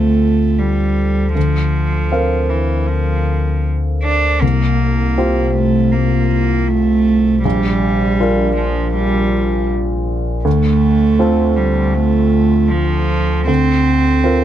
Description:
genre	neoclassical piano and strings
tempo	79 BPM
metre	4/4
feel	rubato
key	D minor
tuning	A4 = 438 Hz
part	warm cello	second line	0.0-14.4 s	E3 to D4	-16 LUFS	right 3 dB	none
part	warm baby grand piano	accompaniment	0.0-14.4 s	Bb1 to F5	-18 LUFS	left 1 dB	none
part	pure sine sub bass	bass	0.0-14.4 s	Bb1 to D2	-18 LUFS	left 1 dB	none
room	little or no reverb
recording	dark, warm production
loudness	-13 LUFS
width	side -11 dB against mid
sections	0.0-14.4 A section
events	none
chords	0.0 Dm7; 1.4 Bbadd9/D; 4.4 C7sus4; 7.4 Gm7/Bb; 10.5 Dm7; 13.5 Bbadd9/D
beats	0.59 | 1.35 2.12 2.89 3.66 | 4.42 5.18 5.93 6.69 | 7.44 8.20 8.95 9.71 | 10.46 11.21 11.96 12.70 | 13.48 14.24

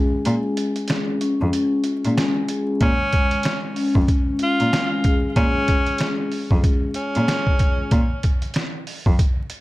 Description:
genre	hip hop, boom-bap hip-hop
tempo	94 BPM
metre	4/4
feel	swing 62% on 16ths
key	Bb minor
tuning	A4 = 440 Hz
part	vibraphone with soft mallets	accompaniment	0.0-7.9 s	Ab3 to Ab4	-23 LUFS	left 2 dB	cassette tape, high-pass filter, low-pass filter
part	rich cello	bass	0.3-9.1 s	F2 to Bb2	-22 LUFS	equal	none
part	trip hop sampler-style drum kit	drums	0.3-9.6 s	hi-hat, kick drum, snare drum	-21 LUFS	equal	none
part	edgy tenor saxophone	melody	2.8-7.9 s	Db4 to F4	-24 LUFS	equal	high-pass filter, low-pass filter, digital delay
room	light reverb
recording	vinyl crackle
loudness	-18 LUFS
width	side -18 dB against mid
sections	0.0-2.8 A section; 2.8-9.6 A section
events	break 0.3-2.8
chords	0.0 Bbm7 (rootless)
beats	| 0.26 0.89 1.53 2.17 | 2.81 3.45 4.09 4.72 | 5.36 6.00 6.64 7.28 | 7.92 8.55 9.19

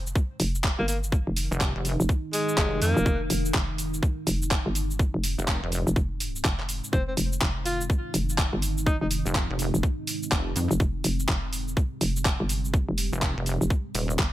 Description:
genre	bass house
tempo	124 BPM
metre	4/4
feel	swing 61% on 16ths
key	F minor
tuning	A4 = 440 Hz
part	deep dark ambient pad	sustained chords	0.0-14.3 s	Ab3 to G4	-35 LUFS	right 1 dB	chorus, built-in reverb, sidechain pumping
part	hollow knocking FM bass	bass	0.0-14.3 s	F1 to G1	-27 LUFS	equal	sidechain pumping
part	garage drum kit	drums	0.1-14.3 s	cabasa, handclaps, hi-hat	-30 LUFS	equal	overdrive
part	electronic kick drum	drums	0.2-14.3 s	none	-24 LUFS	equal	overdrive
part	bright alto saxophone	melody	0.8-3.2, 6.9-9.1 s	Ab3 to F4	-30 LUFS	left 1 dB	vintage 12-bit sampler grit, tape echo
part	pulsing pluck wobble bass	bass	1.5-5.8, 9.3-14.2 s	Eb1 to F2	-27 LUFS	equal	chorus, tube saturation, sidechain pumping
room	little or no reverb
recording	none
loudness	-24 LUFS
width	side -14 dB against mid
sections	0.0-14.3 A section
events	none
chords	0.0 Fm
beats	0.15 0.64 | 1.12 1.61 2.09 2.58 | 3.06 3.54 4.03 4.51 | 4.99 5.48 5.96 6.45 | 6.93 7.41 7.90 8.38 | 8.87 9.35 9.83 10.32 | 10.80 11.28 11.77 12.25 | 12.74 13.22 13.70 14.19

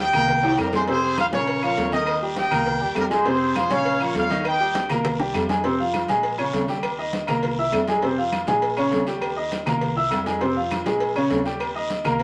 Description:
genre	latin, salsa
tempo	202 BPM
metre	4/4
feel	straight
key	F minor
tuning	A4 = 440 Hz
part	clear trumpet section	melody	0.0-4.9 s	G4 to G5	-25 LUFS	equal	none
part	bright upright piano	accompaniment	0.0-12.2 s	C3 to E6	-26 LUFS	equal	none
part	upright bass	bass	0.0-12.2 s	Bb1 to F2	-37 LUFS	equal	none
part	agogo bells and timbales	percussion	0.1-12.2 s	none	-30 LUFS	equal	none
part	claves	percussion	0.1-12.2 s	none	-39 LUFS	equal	none
part	congas	percussion	0.1-12.2 s	none	-33 LUFS	equal	none
part	cowbell and bongos	percussion	0.1-12.2 s	none	-36 LUFS	equal	none
part	guiro	percussion	0.1-12.2 s	none	-41 LUFS	equal	none
room	wet studio reverb, RT60 0.8 s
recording	none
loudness	-22 LUFS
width	mono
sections	0.0-5.6 A section; 5.6-12.2 B section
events	drum fill 0.4-0.9, 4.7-5.6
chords	0.3 C5; 0.9 Fm; 1.5 Bbm; 2.1 Eb; 2.7 C7; 3.3 Fm; 3.9 Bbm; 4.4 Eb; 5.0 C5; 5.6 Fm; 6.2 Bbm7; 6.8 Eb; 7.4 C7; 8.0 Fm; 8.6 Bbm7; 9.2 Eb; 9.8 C7; 10.4 Fm; 11.0 Bbm7; 11.6 Eb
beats	0.29 0.58 | 0.88 1.18 1.48 1.77 | 2.07 2.37 2.66 2.96 | 3.26 3.56 3.85 4.15 | 4.45 4.75 5.04 5.34 | 5.64 5.94 6.24 6.53 | 6.83 7.13 7.43 7.73 | 8.03 8.32 8.62 8.92 | 9.22 9.52 9.81 10.11 | 10.41 10.71 11.01 11.30 | 11.60 11.90 12.20

